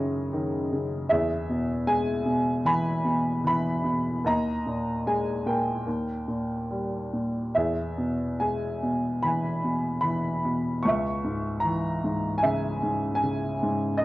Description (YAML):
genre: classical, lyrical solo piano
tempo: 74 BPM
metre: 4/4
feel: uneven beats, rubato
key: unclear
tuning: A4 = 440 Hz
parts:
  - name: warm upright piano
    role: solo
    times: 0.0-14.0 s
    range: C#2 to C#6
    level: -24 LUFS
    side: equal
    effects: none
room: light reverb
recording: worn, warbling old tape, cassette tape, warbly pitch drift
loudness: -24 LUFS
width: side -18 dB against mid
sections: 0.0-14.0 A section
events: none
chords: 0.0 D#m7/F#; 1.1 E; 4.3 D#sus4; 5.9 D#; 7.6 E; 10.8 C#m